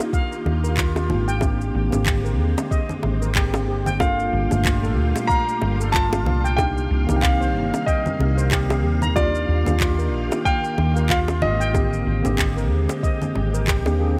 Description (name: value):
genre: sunset chillout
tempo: 93 BPM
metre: 4/4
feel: swing 57% on 16ths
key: unclear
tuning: A4 = 445 Hz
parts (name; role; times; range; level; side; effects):
- mellow tine electric piano; accompaniment; 0.0-14.2 s; D3 to A4; -30 LUFS; equal; digital delay
- soft string machine; sustained chords; 0.0-14.2 s; Bb2 to F5; -32 LUFS; equal; ensemble chorus
- electronic shaker, handclaps and congas; drums; 0.0-14.0 s; none; -30 LUFS; equal; none
- bongos; percussion; 0.0-14.0 s; none; -30 LUFS; equal; none
- steel pan; arpeggios; 0.1-14.2 s; F4 to Bb5; -32 LUFS; equal; digital delay
- electronic kick drum; drums; 0.1-13.8 s; none; -26 LUFS; equal; none
- hollow-body short-scale fingered electric bass; bass; 0.5-14.2 s; G1 to Eb2; -24 LUFS; equal; none
- warm grand piano; melody; 4.0-13.6 s; D5 to Bb5; -28 LUFS; equal; digital delay
room: light reverb, small room ambience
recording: none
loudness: -21 LUFS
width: mono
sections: 0.0-14.2 A section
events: none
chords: 0.0 Ebmaj9; 1.4 Abmaj9#11; 4.0 Gm9; 6.6 Cm9; 9.2 Ebmaj9; 11.7 Abmaj9#11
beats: 0.13 0.78 | 1.42 2.07 2.71 3.36 | 4.00 4.65 5.29 5.94 | 6.58 7.23 7.87 8.52 | 9.16 9.81 10.45 11.10 | 11.74 12.39 13.04 13.68